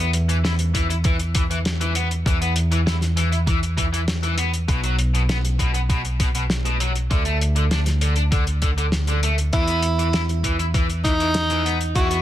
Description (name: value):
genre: synthwave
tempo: 99 BPM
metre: 4/4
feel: straight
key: unclear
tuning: A4 = 441 Hz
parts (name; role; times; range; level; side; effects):
- overdriven electric guitar; riff; 0.0-12.2 s; B2 to E4; -26 LUFS; left 2 dB; lush chorus, digital delay
- deep dub picked electric bass; bass; 0.0-12.2 s; B1 to E2; -21 LUFS; equal; tube saturation, sidechain pumping
- cloth-damped thuddy drum kit; drums; 0.1-12.2 s; hi-hat, snare drum; -27 LUFS; left 1 dB; none
- electronic kick drum; drums; 0.7-12.1 s; none; -22 LUFS; equal; none
- clear tenor saxophone; melody; 9.5-12.2 s; D#4 to F#4; -23 LUFS; right 1 dB; tape echo
room: small room reverb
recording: none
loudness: -18 LUFS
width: side -12 dB against mid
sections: 0.0-12.2 A section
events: none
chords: 0.0 E5; 4.7 B5; 7.1 D5; 9.5 E5